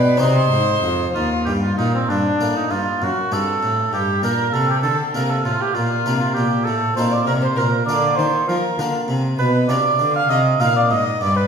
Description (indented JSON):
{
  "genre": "classical, baroque-style sonata movement with continuo",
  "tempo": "66 BPM (dotted quarters)",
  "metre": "6/8",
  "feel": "straight",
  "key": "G minor",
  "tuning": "A4 = 443 Hz",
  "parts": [
    { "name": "rich violin", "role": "melody", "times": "0.0-11.5 s", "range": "C4 to F5", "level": "-26 LUFS", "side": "left 4 dB", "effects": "none" },
    { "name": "warm oboe", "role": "second line", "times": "0.0-11.5 s", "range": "C4 to F5", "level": "-20 LUFS", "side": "right 2 dB", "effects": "none" },
    { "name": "harpsichord", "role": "accompaniment", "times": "0.0-11.5 s", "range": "Eb2 to C5", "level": "-25 LUFS", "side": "left 2 dB", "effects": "none" },
    { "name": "dark cello", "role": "bass", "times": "0.0-11.5 s", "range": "Eb2 to F3", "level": "-21 LUFS", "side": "equal", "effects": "none" }
  ],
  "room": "wet recital hall reverb, RT60 1.4 s",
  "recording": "recorded in a church or concert hall",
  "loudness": "-16 LUFS",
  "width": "side -6 dB against mid",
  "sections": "0.0-2.1 A section; 2.1-11.5 A section",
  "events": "none",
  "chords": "0.2 Cm; 2.1 Gm; 3.0 D7/F#; 3.9 Gm; 5.8 Bb; 6.7 F7/A; 7.6 Bb; 9.4 Bdim; 10.3 Cm"
}